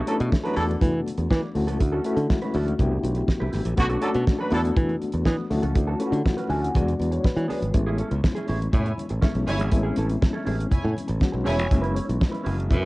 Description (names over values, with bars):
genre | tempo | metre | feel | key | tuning
disco | 121 BPM | 4/4 | straight | unclear | A4 = 439 Hz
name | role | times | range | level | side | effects
mellow electric guitar | accompaniment | 0.0-12.9 s | B3 to C#5 | -34 LUFS | right 2 dB | phaser, cassette tape
reed electric piano | accompaniment | 0.0-12.9 s | F#3 to G#5 | -28 LUFS | left 2 dB | fast tremolo, cassette tape
warm horn section | stabs | 0.1-0.6, 3.8-4.6 s | D3 to B4 | -27 LUFS | right 1 dB | cassette tape
damped 70s drum kit | drums | 0.1-12.8 s | hi-hat, kick drum, snare drum | -22 LUFS | equal | cassette tape
modern bright fingered electric bass | bass | 0.2-12.9 s | E1 to E3 | -25 LUFS | equal | none
congas | percussion | 0.3-12.8 s | none | -36 LUFS | left 2 dB | none
dark studio string section | second line | 8.7-12.8 s | C#4 to G#5 | -30 LUFS | right 2 dB | cassette tape
room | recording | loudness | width
light reverb | home recording on cassette, nothing above 10.6 kHz | -21 LUFS | side -21 dB against mid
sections
0.0-7.7 A section; 7.7-12.9 B section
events
reed electric piano fill 6.3-7.7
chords
0.0 Bm7; 0.6 E7sus4; 1.6 Dmaj7; 2.8 Cmaj7; 3.8 Bm7; 4.5 E7sus4; 5.5 Dmaj7; 6.7 E7; 7.7 Amaj7; 11.7 F#7sus4